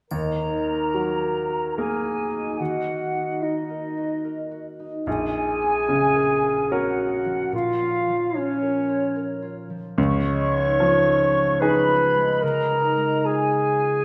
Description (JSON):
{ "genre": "cinematic, emotional film score for orchestra", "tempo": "73 BPM", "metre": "3/4", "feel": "rubato", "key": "Eb minor", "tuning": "A4 = 440 Hz", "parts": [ { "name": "dark clarinet", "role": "second line", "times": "0.1-14.0 s", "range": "Db4 to Db5", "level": "-26 LUFS", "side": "equal", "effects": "none" }, { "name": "mellow hollow flute section", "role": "second line", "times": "0.1-14.0 s", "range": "Db5 to Db6", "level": "-30 LUFS", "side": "equal", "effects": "none" }, { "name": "bright grand piano", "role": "accompaniment", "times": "0.1-14.0 s", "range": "Bb1 to Bb4", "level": "-29 LUFS", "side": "equal", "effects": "none" }, { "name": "concert harp", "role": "arpeggios", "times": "0.1-14.0 s", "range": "Bb2 to Bb4", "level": "-32 LUFS", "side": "equal", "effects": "none" }, { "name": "triangle", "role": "percussion", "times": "0.1-1.7 s", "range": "none", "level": "-53 LUFS", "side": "equal", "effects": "none" } ], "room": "wet scoring stage reverb, RT60 1.6 s", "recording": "none", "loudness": "-23 LUFS", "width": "mono", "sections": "0.1-14.0 A section", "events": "none", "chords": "0.1 Ebm; 5.1 Bbm; 10.0 Dbadd9" }